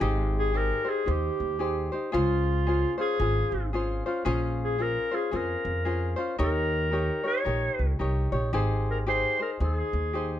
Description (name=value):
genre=Hawaiian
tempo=113 BPM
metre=4/4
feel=swing 61% on 8ths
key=Ab major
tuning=A4 = 441 Hz
part: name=tenor ukulele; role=accompaniment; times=0.0-10.4 s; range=Db4 to Db5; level=-30 LUFS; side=left 2 dB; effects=none
part: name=upright bass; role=bass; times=0.0-10.4 s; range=Ab1 to F2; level=-28 LUFS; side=equal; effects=none
part: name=mellow clarinet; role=melody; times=0.4-10.4 s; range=F4 to Db5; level=-28 LUFS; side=equal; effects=plate reverb
room=light reverb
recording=none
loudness=-25 LUFS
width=side -11 dB against mid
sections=0.0-10.4 A section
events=none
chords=0.0 Abmaj7; 2.1 Dbmaj7; 4.3 Bbm9; 6.4 Eb7; 8.5 Abmaj7